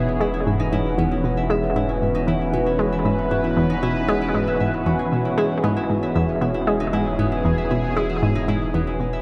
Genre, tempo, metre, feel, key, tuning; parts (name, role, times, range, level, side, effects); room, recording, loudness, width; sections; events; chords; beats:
ambient, sequencer-driven space music; 116 BPM; 4/4; straight; E major; A4 = 440 Hz
sweeping resonant pad; sustained chords; 0.0-9.2 s; E3 to B4; -26 LUFS; equal; chorus
concert harp; arpeggios; 0.0-9.2 s; B3 to E5; -30 LUFS; equal; delay
analog pluck; riff; 0.0-9.1 s; E2 to G#3; -24 LUFS; equal; chorus, delay
warm sub bass; bass; 0.0-9.2 s; E1; -32 LUFS; equal
wet cathedral reverb, RT60 5.6 s; in a vast, echoing space, lossy compression artefacts; -21 LUFS; mono
0.0-9.2 A section
fade-out 8.1-9.2
0.0 E6
0.21 0.72 | 1.24 1.76 2.27 2.79 | 3.31 3.83 4.34 4.86 | 5.38 5.90 6.41 6.93 | 7.45 7.96 8.48 9.00